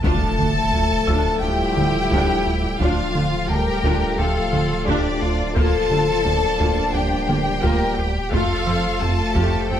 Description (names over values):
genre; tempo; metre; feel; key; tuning
cinematic, hybrid orchestral and electronic film score; 87 BPM; 4/4; straight; D minor; A4 = 442 Hz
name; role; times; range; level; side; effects
warm symphonic violin section; second line; 0.0-9.8 s; D4 to A4; -27 LUFS; left 1 dB; none
clear trombone section; sustained chords; 0.0-9.8 s; F3 to Bb3; -30 LUFS; right 4 dB; none
mellow French horn section; sustained chords; 0.0-9.8 s; D3 to A4; -27 LUFS; left 6 dB; none
round analog bass; riff; 0.0-9.8 s; D2 to F3; -24 LUFS; right 1 dB; none
punchy sub bass; bass; 0.0-9.8 s; D1 to F1; -30 LUFS; equal; none
rich studio double bass section; bass; 0.0-9.8 s; D2 to F2; -28 LUFS; right 2 dB; none
taiko ensemble; drums; 0.0-9.8 s; none; -27 LUFS; equal; none
impact; sound effects; 0.0-2.8 s; none; -29 LUFS; equal; none
rich symphonic violin section; melody; 0.1-9.8 s; D5 to A5; -26 LUFS; left 1 dB; none
rich symphonic viola section; accompaniment; 0.1-9.8 s; C3 to F4; -28 LUFS; equal; none
felt-muted upright piano; texture; 1.1-9.8 s; G4 to E6; -34 LUFS; left 1 dB; none
rich chamber cello section; bass; 1.4-9.8 s; D4 to Bb4; -28 LUFS; left 2 dB; none
room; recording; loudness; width
moderate scoring stage reverb, RT60 1.7 s; close, detailed microphones; -17 LUFS; side -10 dB against mid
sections
0.0-9.8 A section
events
impact 0.0-2.8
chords
0.0 Dm; 5.6 Bb6/D; 8.3 F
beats
| 0.04 0.73 1.42 2.11 | 2.80 3.49 4.18 4.87 | 5.56 6.25 6.94 7.63 | 8.32 9.01 9.70